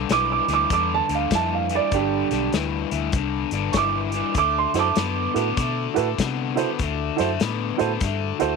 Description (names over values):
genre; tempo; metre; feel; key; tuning
electric blues shuffle; 98 BPM; 4/4; swing 64% on 8ths; D mixolydian; A4 = 441 Hz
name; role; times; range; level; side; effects
cranked stack guitar; riff; 0.0-8.6 s; G2 to B3; -26 LUFS; left 16 dB; overdrive
vintage muted fingered electric bass; bass; 0.0-8.6 s; G1 to C3; -28 LUFS; left 1 dB; none
dark upright piano; accompaniment; 0.1-8.5 s; D4 to D6; -22 LUFS; right 14 dB; none
natural country drum kit; drums; 0.1-8.5 s; hi-hat, kick drum, snare drum; -26 LUFS; left 5 dB; none
room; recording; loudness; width
light reverb, studio ambience; 1960s-style stereo with parts hard left and right; -20 LUFS; side -4 dB against mid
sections
0.0-8.6 A section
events
none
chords
0.0 G7(no3); 4.4 D9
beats
0.09 0.70 1.31 | 1.92 2.53 3.14 3.75 | 4.36 4.96 5.57 6.18 | 6.79 7.40 8.01